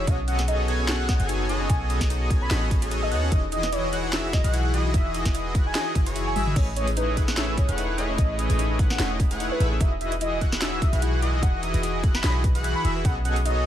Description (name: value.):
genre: future bass.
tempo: 148 BPM.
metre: 4/4.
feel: swing 54% on 16ths, half-time.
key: E major.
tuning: A4 = 440 Hz.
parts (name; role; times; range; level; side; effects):
warm velvety synth lead; melody; 0.0-13.6 s; B4 to B5; -32 LUFS; equal; chorus, sidechain pumping, tape echo.
soft round pluck; arpeggios; 0.0-13.5 s; C#4 to E5; -36 LUFS; left 4 dB; chorus, sidechain pumping, ping-pong delay.
warm 808-style bass; bass; 0.0-13.7 s; E1 to D#2; -26 LUFS; equal; sidechain pumping.
airy dreamy lead; arpeggios; 0.1-13.6 s; C#6 to G#6; -34 LUFS; equal; chorus, sidechain pumping, ping-pong delay.
soft supersaw; riff; 0.1-13.6 s; E3 to G#5; -29 LUFS; equal; sidechain pumping.
electronic kick drum; drums; 0.1-13.1 s; none; -22 LUFS; equal; none.
trap drum kit; drums; 0.1-13.5 s; crash cymbal, hi-hat, snare drum, toms; -30 LUFS; equal; none.
room: light reverb.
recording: lossy compression artefacts.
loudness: -21 LUFS.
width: side -11 dB against mid.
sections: 0.0-6.6 A section; 6.6-13.7 A section.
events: drop 0.0-6.6, 6.6-13.7; drum fill 6.4.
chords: 0.1 B13; 3.3 Emaj7; 6.6 Amaj9#11; 9.8 Emaj7; 13.0 B13.